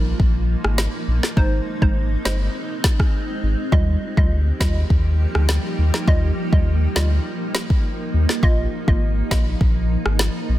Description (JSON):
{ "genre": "dancehall", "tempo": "102 BPM", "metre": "4/4", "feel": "straight", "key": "Eb major", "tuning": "A4 = 440 Hz", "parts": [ { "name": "hollow square pluck", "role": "accompaniment", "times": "0.0-9.4 s", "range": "G3 to Eb5", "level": "-27 LUFS", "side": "right 2 dB", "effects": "chorus" }, { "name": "granular cloud pad", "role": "sustained chords", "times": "0.0-10.6 s", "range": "F3 to G4", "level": "-27 LUFS", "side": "right 1 dB", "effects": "built-in reverb, sidechain pumping" }, { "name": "warm sub bass", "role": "bass", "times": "0.0-10.6 s", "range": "G1 to Eb2", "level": "-19 LUFS", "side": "equal", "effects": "none" }, { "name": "afro-pop drum kit", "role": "drums", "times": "0.2-10.3 s", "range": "kick drum, rim click, snare drum", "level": "-20 LUFS", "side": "equal", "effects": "none" } ], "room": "little or no reverb", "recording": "dense, heavily limited modern master", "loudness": "-17 LUFS", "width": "side -14 dB against mid", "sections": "0.0-10.6 A section", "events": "break 0.0-8.4", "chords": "0.0 Bbsus4; 1.4 Ab; 3.7 Ebadd9; 8.4 Bbsus4" }